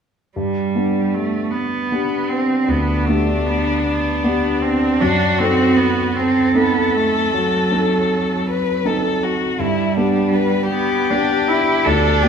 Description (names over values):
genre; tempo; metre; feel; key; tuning
classical, slow romantic movement for piano trio; 52 BPM (dotted quarters); 12/8; rubato; G major; A4 = 440 Hz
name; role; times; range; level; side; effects
rich cello; second line; 0.4-12.3 s; F#3 to E4; -19 LUFS; right 4 dB; none
dark concert grand piano; accompaniment; 0.4-12.3 s; D2 to A4; -20 LUFS; left 1 dB; none
dark violin; melody; 2.7-12.3 s; D4 to B4; -20 LUFS; left 5 dB; none
room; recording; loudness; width
wet stone room reverb, RT60 1.1 s; heard from further back in the room; -15 LUFS; side -7 dB against mid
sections
0.3-12.3 A section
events
none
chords
0.3 G; 5.0 F#dim7; 9.6 G